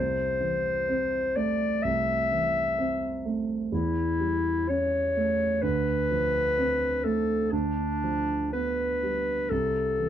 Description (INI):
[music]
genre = classical, romantic duo for clarinet and grand piano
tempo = 63 BPM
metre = 4/4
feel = rubato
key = A minor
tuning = A4 = 440 Hz
[part]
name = warm clarinet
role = melody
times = 0.0-10.1 s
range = D4 to E5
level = -26 LUFS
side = left 2 dB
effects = none
[part]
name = dark concert grand piano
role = accompaniment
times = 0.0-10.1 s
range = C2 to C#4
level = -29 LUFS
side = right 3 dB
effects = none
[sound]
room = light reverb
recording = dark, warm production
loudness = -24 LUFS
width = side -10 dB against mid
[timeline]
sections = 0.0-10.1 A section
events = none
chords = 0.0 Am/C; 3.7 A7/E; 5.6 Dm7; 7.5 G7/D; 9.5 C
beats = 0.88 1.83 2.77 | 3.71 4.70 5.64 6.57 | 7.52 8.54 9.50